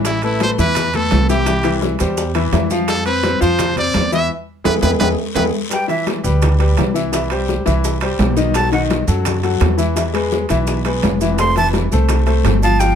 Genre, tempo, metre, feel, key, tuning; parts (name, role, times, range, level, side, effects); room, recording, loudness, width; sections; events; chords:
latin, salsa; 169 BPM; 4/4; straight; A4 = 440 Hz
bright concert grand piano; accompaniment; 0.0-12.9 s; D#3 to F5; -19 LUFS; left 3 dB
upright bass; bass; 0.0-13.0 s; F1 to F#2; -18 LUFS; right 1 dB
timbales; percussion; 0.0-13.0 s; -25 LUFS; right 8 dB
brilliant trumpet; melody; 0.1-5.4 s; E4 to E5; -20 LUFS; right 2 dB
bongos; percussion; 0.1-13.0 s; -26 LUFS; left 5 dB
congas; percussion; 0.1-13.0 s; -25 LUFS; left 4 dB
guiro; percussion; 0.1-13.0 s; -34 LUFS; left 8 dB
maracas; percussion; 0.1-13.0 s; -31 LUFS; right 11 dB
breathy bright jazz flute; melody; 5.7-6.1, 8.6-8.8, 11.4-13.0 s; E5 to C6; -18 LUFS; right 1 dB
light reverb; -14 LUFS; side -8 dB against mid
0.0-5.7 A section; 5.7-13.0 B section
drum fill 4.3-5.7; band accent 4.3-5.7; flute solo 5.7-13.0
0.1 Amadd9; 1.5 C; 2.9 F5; 4.3 E; 5.7 G6; 7.1 C; 8.5 B7; 10.0 E; 11.4 Fmaj7